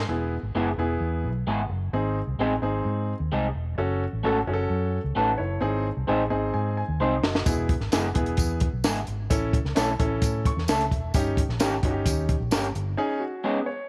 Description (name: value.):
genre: uptempo 1960s-style soul.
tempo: 130 BPM.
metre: 4/4.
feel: straight.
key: unclear.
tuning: A4 = 440 Hz.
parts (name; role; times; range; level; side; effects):
warm grand piano; accompaniment; 0.0-13.9 s; B3 to C#6; -31 LUFS; equal; none.
vintage muted fingered electric bass; bass; 0.0-12.9 s; E1 to A2; -31 LUFS; equal; none.
electric guitar through a small old amp; stabs; 0.6-13.6 s; G#3 to A#4; -30 LUFS; equal; none.
compact cocktail drum kit; drums; 7.2-12.9 s; hi-hat, kick drum, snare drum; -28 LUFS; equal; none.
tambourine; percussion; 7.5-12.6 s; none; -40 LUFS; equal; none.
room: light reverb, small room ambience.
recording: none.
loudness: -26 LUFS.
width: mono.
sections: 0.1-13.9 A section.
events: grand piano fill 6.1-7.5, 10.2-11.2; drum fill 6.5-7.5.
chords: 0.1 E; 1.9 G#; 3.8 F#m; 5.6 G#; 7.5 E; 9.3 A; 11.2 D#7/G; 13.0 G#sus4.